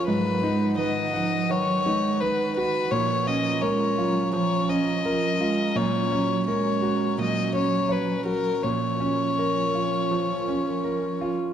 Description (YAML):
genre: neoclassical piano and strings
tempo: 84 BPM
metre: 4/4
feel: rubato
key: unclear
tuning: A4 = 440 Hz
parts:
  - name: warm violin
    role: melody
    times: 0.0-11.4 s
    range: A#4 to D#5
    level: -26 LUFS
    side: left 5 dB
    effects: none
  - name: dark cello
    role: second line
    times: 0.0-11.3 s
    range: D#3 to G#3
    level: -29 LUFS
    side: right 4 dB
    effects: tape echo
  - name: bright grand piano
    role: accompaniment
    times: 0.0-11.5 s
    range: G#2 to F#5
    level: -27 LUFS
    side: right 3 dB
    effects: none
  - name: warbly tape-like pad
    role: sustained chords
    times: 0.0-11.5 s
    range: C#4 to A#5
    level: -33 LUFS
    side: equal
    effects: chorus, built-in reverb
room: moderate concert hall reverb, RT60 2.2 s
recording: dark, warm production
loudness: -22 LUFS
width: side -9 dB against mid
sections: 0.0-11.5 A section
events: none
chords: 0.1 G#m7; 2.9 A#m; 5.8 F#/A#; 8.6 A#m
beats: | 0.08 0.79 1.50 2.21 | 2.91 3.62 4.33 5.05 | 5.76 6.47 7.19 7.91 | 8.64 9.38 10.11 10.84